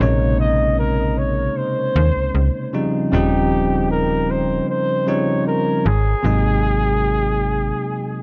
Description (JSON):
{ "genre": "vaporwave", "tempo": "77 BPM", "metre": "4/4", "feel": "swing 54% on 16ths", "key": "Bb minor", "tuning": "A4 = 438 Hz", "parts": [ { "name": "mellow flugelhorn", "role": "melody", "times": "0.0-8.2 s", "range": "G4 to Eb5", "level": "-24 LUFS", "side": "equal", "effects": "tape echo" }, { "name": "barky tine electric piano", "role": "accompaniment", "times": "0.0-8.2 s", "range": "C3 to Eb4", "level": "-23 LUFS", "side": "equal", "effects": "subtle chorus" }, { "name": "slap-like FM bass", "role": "bass", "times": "0.0-7.7 s", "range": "Eb1 to Eb2", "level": "-22 LUFS", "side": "equal", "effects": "none" } ], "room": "light reverb, studio ambience", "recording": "cassette tape", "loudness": "-19 LUFS", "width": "mono", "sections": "0.0-8.2 A section", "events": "break 7.8-8.2", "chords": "0.0 Bbm11; 2.7 Eb13; 5.9 Ab9" }